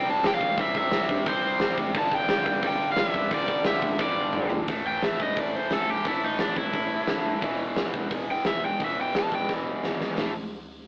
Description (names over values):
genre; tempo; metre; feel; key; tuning
punk rock; 175 BPM; 4/4; straight; A minor; A4 = 440 Hz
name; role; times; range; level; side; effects
crunchy overdriven guitar; melody; 0.0-9.5 s; D4 to A5; -27 LUFS; equal; none
biting overdriven guitar; riff; 0.0-10.3 s; E2 to C4; -29 LUFS; equal; none
picked electric bass; bass; 0.0-10.3 s; E1 to G2; -39 LUFS; equal; none
big rock drum kit; drums; 0.2-10.3 s; hi-hat, kick drum, snare drum, toms; -28 LUFS; equal; none
room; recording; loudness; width
light reverb; rough rehearsal-room recording, tube saturation, AM radio sound; -23 LUFS; side -32 dB against mid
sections
0.0-4.7 A section; 4.7-10.2 B section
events
drum fill 4.0-4.7, 9.5-10.2; overdriven electric guitar solo 4.7-10.2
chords
0.0 C; 1.9 G5; 4.7 A5; 7.4 E5; 10.2 A5